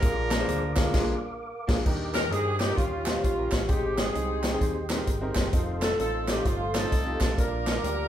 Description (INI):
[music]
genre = uptempo gospel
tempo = 130 BPM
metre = 4/4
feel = swing 62% on 8ths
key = Eb major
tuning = A4 = 440 Hz
[part]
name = warm horn section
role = melody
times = 0.0-8.1 s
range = A3 to Bb4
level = -30 LUFS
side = equal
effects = none
[part]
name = clear upright piano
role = accompaniment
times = 0.0-8.1 s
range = Ab2 to C5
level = -32 LUFS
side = left 1 dB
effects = none
[part]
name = percussive tonewheel organ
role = sustained chords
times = 0.0-8.1 s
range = G4 to D6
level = -35 LUFS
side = right 2 dB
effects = slow rotary speaker, chorus vibrato
[part]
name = fingered electric bass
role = bass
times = 0.0-8.1 s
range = F1 to G2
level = -33 LUFS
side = equal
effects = none
[part]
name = swinging big-band drum kit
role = drums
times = 0.0-8.0 s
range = crash cymbal, hi-hat, kick drum, snare drum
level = -27 LUFS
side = equal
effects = none
[part]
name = group handclap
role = percussion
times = 0.3-7.7 s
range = none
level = -40 LUFS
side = right 4 dB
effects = none
[sound]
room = wet large studio reverb, RT60 0.9 s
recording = band playing live in one room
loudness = -24 LUFS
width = side -11 dB against mid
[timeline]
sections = 0.0-1.9 A section; 1.9-8.1 B section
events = band accent 0.9-1.9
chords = 0.0 Bb7; 1.9 Ebmaj7; 2.8 Eb13; 3.7 Abmaj7; 5.5 F7; 7.4 Bb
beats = | 0.03 0.49 0.94 1.40 | 1.86 2.32 2.78 3.24 | 3.70 4.16 4.62 5.08 | 5.54 6.00 6.46 6.92 | 7.38 7.84